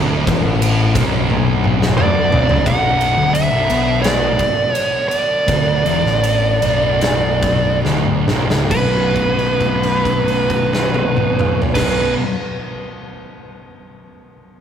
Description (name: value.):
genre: stoner and doom metal.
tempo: 67-88 BPM.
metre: 4/4.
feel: straight.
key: B minor.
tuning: A4 = 440 Hz.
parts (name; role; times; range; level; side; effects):
pipe organ, strings celeste; sustained chords; 0.0-12.1 s; B3 to C#5; -32 LUFS; left 1 dB; none.
high-gain distorted guitar; riff; 0.0-2.6 s; B1 to A2; -28 LUFS; left 2 dB; distortion.
thick fuzz guitar; riff; 0.0-12.2 s; B1 to B2; -22 LUFS; left 8 dB; distortion.
thick fuzz guitar; riff; 0.0-12.2 s; B1 to B2; -21 LUFS; right 3 dB; distortion.
growling picked electric bass; bass; 0.0-12.1 s; B0 to B1; -24 LUFS; left 1 dB; overdrive.
big rock drum kit; drums; 0.3-12.0 s; crash cymbal, kick drum, ride cymbal, snare drum, toms; -20 LUFS; equal; none.
fuzz lead guitar; melody; 2.0-12.1 s; B4 to F#5; -18 LUFS; right 2 dB; distortion.
room: moderate cathedral reverb, RT60 5.3 s.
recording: rough rehearsal-room recording.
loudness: -13 LUFS.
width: side -8 dB against mid.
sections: 0.0-2.7 A section; 2.7-8.7 B section; 8.7-12.3 C section.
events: drum fill 1.3-2.7, 7.8-8.7; slowing down 2.7-8.7; held note 8.7-11.8.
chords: 0.0 Bm; 8.7 B5.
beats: 0.61 1.29 1.97 | 2.66 3.34 4.04 4.75 | 5.48 6.24 7.02 7.85 | 8.71 9.61 10.50 11.40.